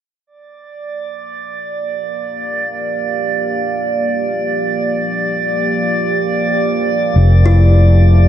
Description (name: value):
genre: ambient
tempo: free time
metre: none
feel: none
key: G dorian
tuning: A4 = 441 Hz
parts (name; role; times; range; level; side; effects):
- deep dark ambient pad; sustained chords; 2.1-8.3 s; F3 to F5; -20 LUFS; equal; chorus, built-in reverb
- drifting glass-harmonics texture; texture; 0.7-8.3 s; D5; -19 LUFS; right 4 dB; chorus, built-in reverb
- fingered electric bass; bass; 7.2-8.3 s; F1; -7 LUFS; equal; tube saturation
- kalimba; arpeggios; 7.5-8.3 s; E4; -20 LUFS; left 4 dB; none
room: light reverb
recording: echo-heavy mix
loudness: -13 LUFS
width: side -10 dB against mid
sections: 0.3-8.3 A section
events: fade-in on ambient pad 0.3-8.3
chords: 0.3 Gm7; 6.8 Fmaj7